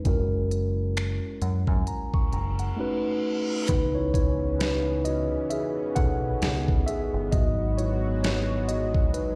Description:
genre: contemporary R&B.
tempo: 66 BPM.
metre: 4/4.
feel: swing 58% on 16ths.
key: C# minor from 3.7 s.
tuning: A4 = 440 Hz.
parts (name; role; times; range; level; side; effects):
mellow tine electric piano; accompaniment; 0.0-9.4 s; E3 to C#6; -30 LUFS; equal; none.
deep dub picked electric bass; bass; 0.1-8.9 s; F#1 to F#2; -30 LUFS; equal; none.
smooth R&B drum kit; drums; 0.1-9.4 s; finger snaps, hi-hat, kick drum, snare drum; -28 LUFS; equal; none.
reverse cymbal; sound effects; 2.5-3.7 s; none; -40 LUFS; equal; none.
chorused pulse-width pad; sustained chords; 3.7-9.4 s; C#3 to G#4; -37 LUFS; equal; none.
room: light reverb, digital ambience.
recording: played on a big sound system in a bare room, large studio reverb.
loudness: -26 LUFS.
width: mono.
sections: 0.0-3.7 A section; 3.7-9.4 B section.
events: reverse cymbal 2.5-3.7; tine electric piano solo 3.7-9.4.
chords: 0.1 F#9; 2.8 B9; 3.7 C#m9; 7.3 G#m7.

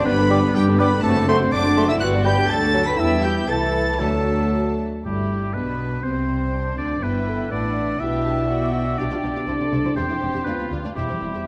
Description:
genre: quick classical-period movement for symphony orchestra.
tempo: 122 BPM.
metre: 2/4.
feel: rubato.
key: G major.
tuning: A4 = 440 Hz.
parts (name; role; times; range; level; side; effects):
clear studio violin section; melody; 0.0-11.4 s; G4 to B6; -35 LUFS; equal; none.
dark clarinet; second line; 0.0-4.8 s; G4 to B5; -30 LUFS; equal; none.
dark studio violin section; second line; 0.0-11.5 s; B3 to D5; -33 LUFS; equal; none.
warm oboe; second line; 0.0-11.4 s; G4 to B5; -30 LUFS; equal; none.
warm studio viola section; accompaniment; 0.0-11.4 s; D3 to D5; -32 LUFS; equal; none.
dark French horn section; sustained chords; 0.0-11.4 s; F#3 to F#4; -29 LUFS; equal; none.
warm studio cello section; bass; 0.0-11.4 s; D2 to B4; -28 LUFS; equal; none.
rich studio double bass section; bass; 0.1-11.3 s; E1 to E2; -28 LUFS; equal; none.
bright silver concert flute; second line; 0.3-4.8 s; G5 to D6; -32 LUFS; equal; none.
warm bassoon; accompaniment; 0.3-4.8 s; E3 to A3; -29 LUFS; equal; none.
timpani; percussion; 4.0-7.7 s; none; barely audible; none; none.
room: wet concert hall reverb, RT60 1.9 s.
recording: dark, warm production.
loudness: -21 LUFS.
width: mono.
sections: 0.0-5.1 A section; 5.1-11.5 B section.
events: none.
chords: 0.1 G; 1.0 D7/F#; 2.0 G; 2.5 D; 3.0 Em; 3.5 Am/C; 4.0 D; 5.1 G; 6.0 Csus2; 7.0 G; 8.0 G/B; 9.5 N.C.; 10.0 C/E; 10.5 Bdim/D; 11.0 C/E.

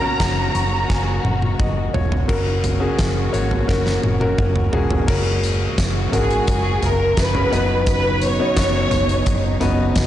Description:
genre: piano-driven pop.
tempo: 86 BPM.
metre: 4/4.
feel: straight.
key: unclear.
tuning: A4 = 439 Hz.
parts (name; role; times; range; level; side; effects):
warm studio violin section; melody; 0.0-1.6, 6.1-9.6 s; G#4 to A#5; -22 LUFS; equal; none.
clear grand piano; accompaniment; 0.0-10.1 s; C#3 to C#6; -24 LUFS; left 2 dB; none.
warm studio string section; sustained chords; 0.0-10.1 s; A#2 to F#4; -28 LUFS; right 1 dB; none.
vintage muted fingered electric bass; bass; 0.2-10.1 s; E1 to G#1; -22 LUFS; equal; transformer saturation.
huge arena drum kit; drums; 0.2-10.1 s; crash cymbal, hi-hat, kick drum, snare drum, toms; -21 LUFS; equal; none.
tambourine; percussion; 5.1-10.1 s; none; -38 LUFS; right 8 dB; none.
room: light reverb, studio reverb.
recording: blown-out, overdriven recording, overdrive, nothing above 10.5 kHz.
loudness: -16 LUFS.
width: side -12 dB against mid.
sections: 0.0-2.3 A section; 2.3-5.1 B section; 5.1-10.1 C section.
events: grand piano fill 0.2-2.3; drum fill 0.9-2.3, 3.7-5.1.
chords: 0.0 F#; 5.1 F#add9; 7.5 Badd9/F#.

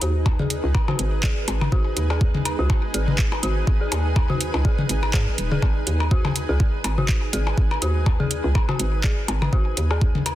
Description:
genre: minimal techno.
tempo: 123 BPM.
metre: 4/4.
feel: swing 56% on 16ths.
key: G# minor.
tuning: A4 = 441 Hz.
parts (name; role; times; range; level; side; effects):
dark detuned synth bell; riff; 0.0-10.0 s; F#4 to G#4; -32 LUFS; left 2 dB; chorus, sidechain pumping, low-pass filter, digital delay.
hollow knocking FM bass; bass; 0.0-10.3 s; D#1 to G#2; -24 LUFS; equal; sidechain pumping.
garage drum kit; drums; 0.0-10.3 s; handclaps, hi-hat; -28 LUFS; right 2 dB; overdrive.
granular cloud pad; texture; 0.0-10.3 s; D#4 to G#5; -30 LUFS; right 2 dB; built-in reverb, sidechain pumping.
electronic kick drum; drums; 0.3-10.1 s; none; -21 LUFS; equal; overdrive.
electronic percussion blips and toms; percussion; 0.3-10.3 s; none; -27 LUFS; left 3 dB; digital delay.
room: digital ambience.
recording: dense, heavily limited modern master.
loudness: -19 LUFS.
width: side -14 dB against mid.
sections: 0.0-10.3 A section.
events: filter sweep on synth bell 0.0-10.3.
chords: 0.0 G#m.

